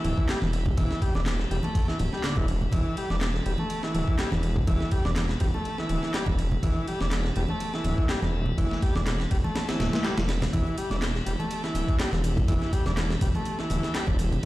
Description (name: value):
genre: breakbeat, breaks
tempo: 123 BPM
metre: 4/4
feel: swing 54% on 16ths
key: E minor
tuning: A4 = 435 Hz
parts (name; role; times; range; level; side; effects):
- tonewheel organ; sustained chords; 0.0-14.5 s; E3 to A4; -38 LUFS; equal; slow rotary speaker, sidechain pumping
- overdriven combo organ; riff; 0.0-14.1 s; D3 to D4; -32 LUFS; equal; dub echo
- detuned saw bass; bass; 0.0-14.4 s; D1 to E1; -27 LUFS; equal; none
- breakbeat sampler-style drum kit; drums; 0.0-14.5 s; kick drum, ride cymbal, snare drum; -28 LUFS; equal; small room ambience
- congas; percussion; 0.0-14.4 s; none; -34 LUFS; equal; none
- punchy analog drum machine; drums; 0.3-14.4 s; handclaps, hi-hat; -39 LUFS; equal; small room ambience
room: little or no reverb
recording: played on a big sound system in a bare room, stone room reverb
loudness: -24 LUFS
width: side -17 dB against mid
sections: 0.0-14.5 A section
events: none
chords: 0.0 Em7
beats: 0.29 | 0.78 1.27 1.75 2.24 | 2.73 3.22 3.71 4.19 | 4.68 5.17 5.66 6.14 | 6.63 7.12 7.61 8.10 | 8.58 9.07 9.56 10.05 | 10.53 11.02 11.51 12.00 | 12.48 12.97 13.46 13.95 | 14.44